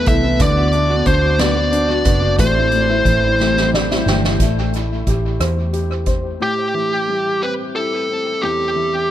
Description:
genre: six-eight pop ballad.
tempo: 60 BPM (dotted quarters).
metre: 6/8.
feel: straight.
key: A minor.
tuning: A4 = 440 Hz.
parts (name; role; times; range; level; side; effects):
fuzz lead guitar; melody; 0.0-9.1 s; G4 to E5; -18 LUFS; equal; distortion, tape echo.
felt-muted upright piano; accompaniment; 0.0-9.1 s; E2 to G5; -21 LUFS; left 4 dB; tape echo.
picked steel-string acoustic guitar; arpeggios; 0.0-4.4 s; A2 to G4; -24 LUFS; right 6 dB; none.
vintage muted fingered electric bass; bass; 0.0-6.4 s; F#1 to E2; -20 LUFS; equal; none.
soft-mallet drum kit; drums; 0.1-6.2 s; hi-hat, kick drum, rim click, snare drum; -20 LUFS; equal; tape echo.
room: light reverb, studio reverb.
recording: echo-heavy mix.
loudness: -14 LUFS.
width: side -12 dB against mid.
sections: 0.0-4.4 A section; 4.4-6.4 B section; 6.4-9.1 C section.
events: drum fill 3.4-4.4; felt piano fill 3.4-4.4.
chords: 0.4 Bm/D; 2.4 Am7.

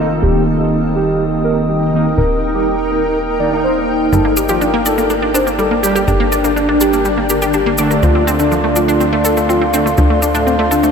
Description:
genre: melodic techno.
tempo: 123 BPM.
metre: 4/4.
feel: straight.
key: G minor.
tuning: A4 = 442 Hz.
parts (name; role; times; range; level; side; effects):
dark analog pad; sustained chords; 0.0-10.9 s; A4 to Eb6; -21 LUFS; left 1 dB; chorus.
analog synth brass; stabs; 0.0-9.9 s; D3 to G4; -19 LUFS; right 2 dB; chorus, analog delay.
plucky analog bass; bass; 0.0-10.9 s; Eb1 to D2; -20 LUFS; equal; tube saturation.
granular cloud pad; texture; 0.0-10.9 s; C4 to G5; -19 LUFS; equal; built-in reverb, lush chorus.
soft octave-layered synth lead; melody; 0.2-10.9 s; A3 to D5; -18 LUFS; left 1 dB; chorus, analog delay.
wide unison pluck; arpeggios; 4.1-10.9 s; F3 to D5; -18 LUFS; equal; cassette tape, analog delay.
cabasa; percussion; 4.1-10.9 s; none; -23 LUFS; left 2 dB; none.
room: wet huge ambient reverb, RT60 9.2 s.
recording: dreamy mix soaked in reverb.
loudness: -12 LUFS.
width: side -6 dB against mid.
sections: 0.0-10.9 A section.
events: none.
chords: 0.2 Eb; 4.1 Gm; 8.0 Dm7.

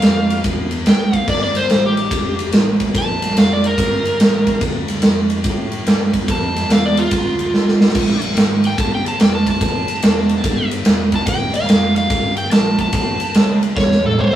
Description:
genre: blues rock power trio and southern rock.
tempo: 144 BPM.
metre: 4/4.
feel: swing 65% on 8ths.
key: D minor.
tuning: A4 = 440 Hz.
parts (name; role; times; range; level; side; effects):
overdriven slide guitar; melody; 0.0-14.4 s; F4 to A5; -20 LUFS; equal; none.
fuzz fingered electric bass; bass; 0.0-14.4 s; D1 to A2; -25 LUFS; equal; overdrive.
big rock drum kit; drums; 0.0-14.4 s; crash cymbal, kick drum, ride cymbal, snare drum, toms; -15 LUFS; right 1 dB; none.
room: light reverb.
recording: rough rehearsal-room recording, warm saturation, small room ambience.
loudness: -14 LUFS.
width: side -12 dB against mid.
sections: 0.0-14.4 A section.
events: electric slide guitar solo 0.0-14.4; drum fill 7.5-7.9, 13.8-14.4.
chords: 0.0 Dm9 (rootless); 1.3 Gm9; 4.6 Dm9; 7.9 Bb5; 9.6 A5; 11.3 Dm; 12.1 Gm; 12.9 A.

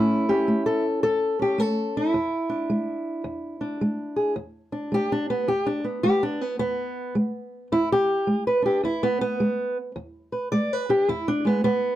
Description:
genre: acoustic country blues, solo or duo.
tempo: 108 BPM.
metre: 4/4.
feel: swing 64% on 8ths.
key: E mixolydian.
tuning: A4 = 441 Hz.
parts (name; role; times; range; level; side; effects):
fingerpicked old ladder-braced acoustic guitar; solo; 0.0-12.0 s; E2 to D5; -22 LUFS; equal; none.
room: light reverb.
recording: dark, warm production.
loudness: -22 LUFS.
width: side -13 dB against mid.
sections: 0.0-4.4 A section; 4.4-12.0 B section.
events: steel-string acoustic guitar solo 4.4-12.0.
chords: 0.0 A; 2.1 E7.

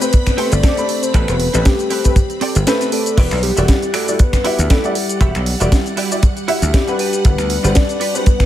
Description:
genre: nu-disco, nu disco.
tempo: 118 BPM.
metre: 4/4.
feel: swing 54% on 16ths.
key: A dorian.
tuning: A4 = 440 Hz.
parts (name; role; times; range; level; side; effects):
soft octave-layered synth lead; melody; 0.0-8.5 s; G4 to D5; -21 LUFS; left 2 dB; chorus, digital delay.
warm baby grand piano; accompaniment; 0.0-8.2 s; G3 to B5; -23 LUFS; left 1 dB; none.
string machine, full ensemble; sustained chords; 0.0-8.5 s; G3 to B5; -26 LUFS; equal; phaser, ensemble chorus, sidechain pumping.
direct-recorded clean electric guitar; riff; 0.0-8.3 s; C4 to G5; -25 LUFS; right 4 dB; ensemble chorus.
house drum kit; drums; 0.0-8.5 s; crash cymbal, finger snaps, hi-hat, shaker, snare drum; -22 LUFS; right 1 dB; overdrive.
kick drum; drums; 0.1-8.5 s; none; -12 LUFS; equal; none.
dry thumbed slap bass; bass; 0.5-7.7 s; E1 to D2; -17 LUFS; equal; none.
room: small room ambience.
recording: none.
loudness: -13 LUFS.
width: side -12 dB against mid.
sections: 0.0-8.5 A section.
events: clean electric guitar fill 2.2-3.2; kick drops out 2.7-3.2.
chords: 0.0 Am9; 3.2 Em9; 7.0 Gmaj7.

